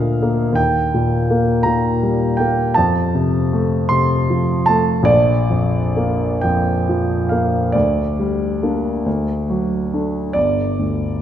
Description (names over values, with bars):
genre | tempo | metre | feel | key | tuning
classical, romantic nocturne for solo piano | 41-56 BPM (dotted quarters) | 12/8 | rubato | G minor | A4 = 440 Hz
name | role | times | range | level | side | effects
warm concert grand piano | solo | 0.0-11.2 s | G1 to C6 | -15 LUFS | equal | none
room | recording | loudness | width
moderate concert hall reverb, RT60 2.0 s | none | -15 LUFS | side -10 dB against mid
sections
0.0-11.2 A section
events
none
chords
0.0 Bb/D; 0.6 Eb; 2.8 F; 5.1 Bb; 7.8 Gm/D; 9.1 D; 10.4 G5